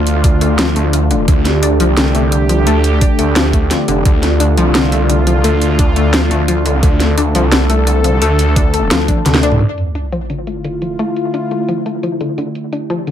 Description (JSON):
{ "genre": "dark technical drum and bass", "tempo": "173 BPM", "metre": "4/4", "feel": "straight", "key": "D minor", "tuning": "A4 = 441 Hz", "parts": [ { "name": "sweeping resonant pad", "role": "sustained chords", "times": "0.0-13.1 s", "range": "D3 to A4", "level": "-18 LUFS", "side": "left 1 dB", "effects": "chorus, sidechain pumping" }, { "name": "snarling distorted saw bass", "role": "bass", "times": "0.0-9.6 s", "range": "F1 to D2", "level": "-14 LUFS", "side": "right 1 dB", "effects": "distortion, overdrive, sidechain pumping" }, { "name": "drum and bass drum kit", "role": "drums", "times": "0.1-13.1 s", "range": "hi-hat, snare drum, toms", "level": "-17 LUFS", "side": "equal", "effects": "overdrive, low-pass filter on hats, low-pass filter on snare, low-pass filter on cymbals, low-pass filter on toms, low-pass filter on room" }, { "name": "analog pluck", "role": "arpeggios", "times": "0.2-13.1 s", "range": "D3 to D4", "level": "-19 LUFS", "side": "left 3 dB", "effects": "chorus, sidechain pumping, digital delay" }, { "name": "electronic kick drum", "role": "drums", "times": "0.2-9.2 s", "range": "none", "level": "-12 LUFS", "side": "right 1 dB", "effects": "overdrive" }, { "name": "sub drop", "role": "sound effects", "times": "9.6-11.0 s", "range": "none", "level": "-22 LUFS", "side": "right 1 dB", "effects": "none" } ], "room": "light reverb, digital ambience", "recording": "none", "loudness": "-11 LUFS", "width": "side -10 dB against mid", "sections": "0.0-9.6 A section; 9.6-13.1 B section", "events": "drum fill 9.1-9.6; impact 9.6-11.0; filter sweep on analog synth pad 9.6-13.1; filter sweep on synth arpeggio sound 9.6-13.1", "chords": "0.0 Dm; 9.6 Dmadd9" }